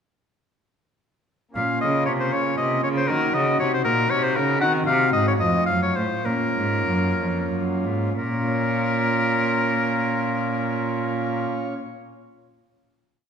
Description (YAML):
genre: classical, baroque-style sonata movement with continuo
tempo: 58-79 BPM (dotted quarters)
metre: 6/8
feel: rubato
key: Bb minor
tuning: A4 = 440 Hz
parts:
  - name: pipe organ, foundations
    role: accompaniment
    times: 1.5-11.7 s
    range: F2 to Db5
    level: -25 LUFS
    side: equal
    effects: none
  - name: clear oboe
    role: melody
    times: 1.6-11.5 s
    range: Bb4 to Gb5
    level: -23 LUFS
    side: left 3 dB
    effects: none
  - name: rich cello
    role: bass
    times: 1.6-11.5 s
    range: F2 to Eb3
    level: -26 LUFS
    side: right 2 dB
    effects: none
room: wet recital hall reverb, RT60 1.6 s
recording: minimal, uncompressed stereo recording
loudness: -20 LUFS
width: side -7 dB against mid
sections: 1.6-8.2 A section; 8.2-12.2 final chord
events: slowing down 3.9-8.2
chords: 1.6 Bbm; 3.1 Ebm; 4.6 Cdim; 5.4 F; 6.3 Bbm